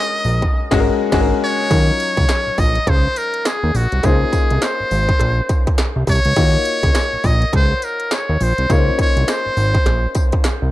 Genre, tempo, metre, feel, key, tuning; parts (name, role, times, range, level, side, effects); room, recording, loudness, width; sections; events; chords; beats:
R&B, new jack swing; 103 BPM; 4/4; swing 61% on 16ths; Eb dorian; A4 = 441 Hz
trumpet with metal mute; melody; 0.0-10.5 s; Gb4 to Eb5; -20 LUFS; equal
clear grand piano; accompaniment; 0.0-10.7 s; Gb3 to Db5; -23 LUFS; left 5 dB
fat analog bass; bass; 0.2-10.7 s; Ab1 to Eb2; -18 LUFS; equal
industrial drum kit; drums; 0.2-10.6 s; crash cymbal, hi-hat, kick drum, snare drum, tambourine; -18 LUFS; equal; distortion
cowbell; percussion; 1.7-10.6 s; -32 LUFS; right 6 dB
studio reverb; dark, warm production; -14 LUFS; side -15 dB against mid
0.0-1.7 A section; 1.7-10.7 B section
band accent 0.5-1.7
0.0 Ab9sus4; 1.7 Ebm9; 4.0 Dbmaj13; 6.4 Ebm9; 8.7 Dbmaj13
0.54 1.12 | 1.71 2.29 2.87 3.46 | 4.04 4.62 5.20 5.79 | 6.37 6.95 7.53 8.12 | 8.70 9.28 9.86 10.45